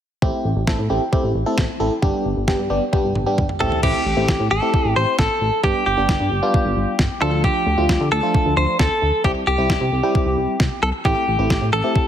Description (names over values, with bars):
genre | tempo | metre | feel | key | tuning
synth-pop | 133 BPM | 4/4 | straight | A minor | A4 = 439 Hz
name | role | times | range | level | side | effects
FM electric piano | accompaniment | 0.2-12.1 s | F3 to A4 | -22 LUFS | equal | chorus, phaser
chorused synth bass | bass | 0.2-11.8 s | G1 to D3 | -22 LUFS | equal | none
clean 12-bit digital drum machine | drums | 0.2-12.1 s | crash cymbal, kick drum, snare drum, toms | -21 LUFS | equal | none
direct-recorded clean electric guitar | melody | 3.6-12.1 s | G4 to C5 | -20 LUFS | equal | wide subtle chorus, slapback echo
room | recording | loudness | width
moderate concert hall reverb, RT60 1.8 s | heavily compressed radio sound, multiband compression | -16 LUFS | side -10 dB against mid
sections
0.2-3.8 A section; 3.8-12.1 B section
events
drum fill 2.9-3.8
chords
0.2 Am7; 2.0 G; 3.6 Am7; 5.6 G; 7.2 Dm; 9.2 C; 11.0 Am7